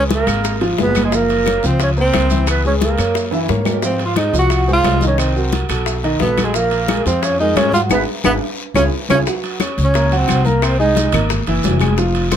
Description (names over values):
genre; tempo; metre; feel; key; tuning
Afro-Cuban jazz; 177 BPM; 4/4; straight; unclear; A4 = 440 Hz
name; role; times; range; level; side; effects
breathy tenor saxophone; melody; 0.0-11.3 s; Ab3 to Gb4; -18 LUFS; right 1 dB; none
warm concert grand piano; accompaniment; 0.0-12.4 s; Eb3 to Db6; -21 LUFS; equal; none
upright bass; bass; 0.0-12.4 s; F1 to Ab2; -19 LUFS; equal; none
bright concert flute; second line; 0.1-11.3 s; Ab4 to Gb5; -24 LUFS; right 5 dB; none
bongos; percussion; 0.1-12.4 s; none; -27 LUFS; left 9 dB; none
congas; percussion; 0.1-12.4 s; none; -23 LUFS; left 4 dB; none
guiro; percussion; 0.1-12.4 s; none; -33 LUFS; left 6 dB; none
maracas; percussion; 0.1-12.4 s; none; -31 LUFS; right 7 dB; none
timbales; percussion; 0.1-12.4 s; none; -26 LUFS; right 6 dB; none
claves; percussion; 0.3-12.4 s; none; -26 LUFS; left 11 dB; none
room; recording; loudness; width
light reverb; none; -14 LUFS; side -9 dB against mid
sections
0.0-9.3 A section; 9.3-12.4 B section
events
drum fill 3.3-3.8, 7.9-9.3; band accent 7.9-9.3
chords
0.0 Db6; 1.1 Gbmaj7#11; 2.5 Dbm7; 3.2 Gb9; 3.8 Ab6; 5.2 Cm7b5; 5.9 B7; 6.6 Bb5; 7.9 Abm7; 8.6 Db; 9.3 Gb; 10.6 C7alt